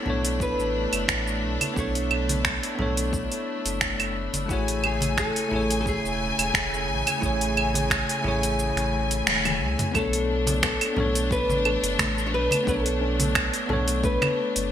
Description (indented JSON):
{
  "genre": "sunset chillout",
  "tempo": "88 BPM",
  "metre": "4/4",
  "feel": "swing 54% on 16ths",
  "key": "B dorian",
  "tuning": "A4 = 439 Hz",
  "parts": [
    { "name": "nylon-string guitar", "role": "melody", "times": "0.0-14.7 s", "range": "F#4 to C#5", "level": "-30 LUFS", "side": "left 1 dB", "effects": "ping-pong delay" },
    { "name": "bell-like tine electric piano", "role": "accompaniment", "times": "0.0-14.7 s", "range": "A3 to C#5", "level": "-30 LUFS", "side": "moving between left 6 dB and right 5 dB", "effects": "auto-pan, vintage 12-bit sampler grit, ping-pong delay" },
    { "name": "clear studio string section", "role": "sustained chords", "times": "0.0-14.7 s", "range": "C#3 to G#5", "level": "-30 LUFS", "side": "left 2 dB", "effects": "none" },
    { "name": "drifting glass-harmonics texture", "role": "texture", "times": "0.0-10.0 s", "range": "E4 to E5", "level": "-39 LUFS", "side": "right 3 dB", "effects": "chorus, built-in reverb" },
    { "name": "warm sub bass", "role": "bass", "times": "0.1-14.7 s", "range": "E1 to C#2", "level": "-29 LUFS", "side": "equal", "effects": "none" },
    { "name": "congas", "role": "percussion", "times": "0.1-14.3 s", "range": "none", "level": "-33 LUFS", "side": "right 1 dB", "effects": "none" },
    { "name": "deep house drum kit", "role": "drums", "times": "0.2-14.7 s", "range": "claves, finger snaps, hi-hat, shaker, toms", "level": "-26 LUFS", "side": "right 2 dB", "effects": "small room reverb, gated reverb" },
    { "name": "electronic kick drum", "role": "drums", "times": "0.4-14.2 s", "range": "none", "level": "-32 LUFS", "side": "equal", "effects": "small room reverb" },
    { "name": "soft round pluck", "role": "arpeggios", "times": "10.0-14.2 s", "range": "A3 to A4", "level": "-37 LUFS", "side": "left 3 dB", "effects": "none" }
  ],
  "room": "moderate plate reverb, RT60 2.0 s, digital ambience",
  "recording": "bright 1980s-style digital production",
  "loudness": "-22 LUFS",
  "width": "side -10 dB against mid",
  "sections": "0.0-10.0 A section; 10.0-14.7 B section",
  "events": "kick drops out 8.6-10.0; drum fill 9.3-10.0; band accent 9.3-9.6",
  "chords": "0.0 Bm9; 4.5 Amaj7; 10.0 Bm9"
}